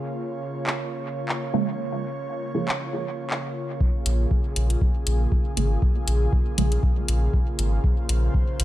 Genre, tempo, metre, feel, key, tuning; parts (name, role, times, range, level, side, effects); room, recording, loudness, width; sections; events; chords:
dub techno; 119 BPM; 4/4; swing 55% on 16ths; Bb minor; A4 = 439 Hz
airy breathy pad; sustained chords; 0.0-8.6 s; Db3 to Db5; -30 LUFS; right 1 dB; chorus, sidechain pumping
booming analog drum machine; drums; 0.7-8.6 s; handclaps, hi-hat; -29 LUFS; left 1 dB; studio reverb, dub echo
filtered dub chord stab; stabs; 1.5-6.7 s; Db3 to Bb3; -28 LUFS; right 3 dB; phaser, sidechain pumping, dub echo
electronic kick drum; drums; 3.8-8.5 s; -22 LUFS; equal; studio reverb
soft dub sub bass; bass; 4.1-8.6 s; Ab1 to Bb1; -22 LUFS; equal; sidechain pumping
little or no reverb; -22 LUFS; side -14 dB against mid
0.0-3.8 A section; 3.8-8.6 B section
0.0 Bbm; 3.8 Bbm7